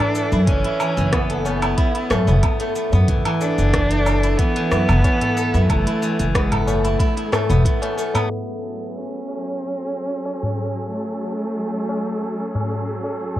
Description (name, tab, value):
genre	organic downtempo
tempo	92 BPM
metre	4/4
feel	straight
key	F# minor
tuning	A4 = 440 Hz
part	rich cello	melody	0.0-13.2 s	G#3 to D4	-25 LUFS	equal	vintage 12-bit sampler grit, ping-pong delay
part	steel-string zither	arpeggios	0.0-11.3 s	E3 to A4	-23 LUFS	equal	tape echo
part	organic electronic drum kit	drums	0.1-13.4 s	hi-hat, rim click, shaker, woodblock	-26 LUFS	equal	overdrive
part	upright bass	bass	0.3-7.6 s	E1 to F#2	-19 LUFS	equal	sidechain pumping
part	electronic kick drum	drums	0.5-7.8 s	none	-21 LUFS	equal	overdrive
part	tabla	percussion	0.8-13.4 s	none	-28 LUFS	left 2 dB	none
part	warm symphonic string section	sustained chords	8.3-13.4 s	F#3 to A4	-29 LUFS	right 2 dB	sidechain pumping, low-pass filter
room	light reverb, studio ambience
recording	worn, warbling old tape, cassette tape, warbly pitch drift, low-pass filter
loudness	-18 LUFS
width	side -13 dB against mid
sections	0.0-8.3 A section; 8.3-13.4 B section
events	filter sweep on string section 8.3-13.4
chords	0.0 Esus4/F#; 8.3 F#m7